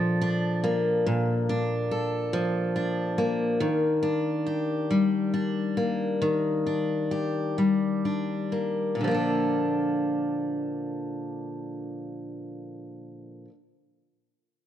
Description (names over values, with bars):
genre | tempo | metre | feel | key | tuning
pop | 40-48 BPM (dotted quarters) | 6/8 | straight | Bb major | A4 = 440 Hz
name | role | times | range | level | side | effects
picked steel-string acoustic guitar | accompaniment | 0.0-13.5 s | Bb2 to A4 | -25 LUFS | left 1 dB | none
room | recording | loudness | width
moderate scoring stage reverb, RT60 1.9 s, studio ambience | dark, warm production | -24 LUFS | side -10 dB against mid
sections
0.0-9.0 A section; 9.0-12.0 B section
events
slowing down 3.6-9.0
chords
0.0 Bbmaj7; 3.6 Ebmaj7; 9.0 Bbmaj7